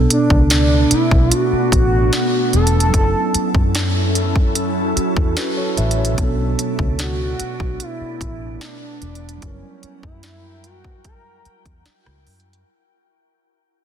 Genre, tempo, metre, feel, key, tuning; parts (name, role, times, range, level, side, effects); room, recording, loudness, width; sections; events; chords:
contemporary R&B; 74 BPM; 4/4; straight; B minor; A4 = 441 Hz
mellow tine electric piano; accompaniment; 0.0-12.7 s; B2 to E5; -23 LUFS; right 4 dB; medium stereo tremolo
glassy FM pad; sustained chords; 0.2-12.6 s; F#3 to G5; -24 LUFS; left 1 dB; ensemble chorus, built-in reverb, sidechain pumping
vintage muted fingered electric bass; bass; 0.0-12.6 s; E1 to F#2; -19 LUFS; equal
gliding portamento lead; melody; 0.1-11.8 s; C#4 to A#4; -21 LUFS; equal; chorus
trap drum kit; drums; 0.1-12.7 s; hi-hat, kick drum, rim click, snare drum; -20 LUFS; equal
light reverb; dense, heavily limited modern master; -15 LUFS; side -9 dB against mid
0.0-12.7 A section
fade-out 0.0-12.7
0.0 Bm7; 2.9 F#m7; 6.2 Bm7; 9.4 F#7b9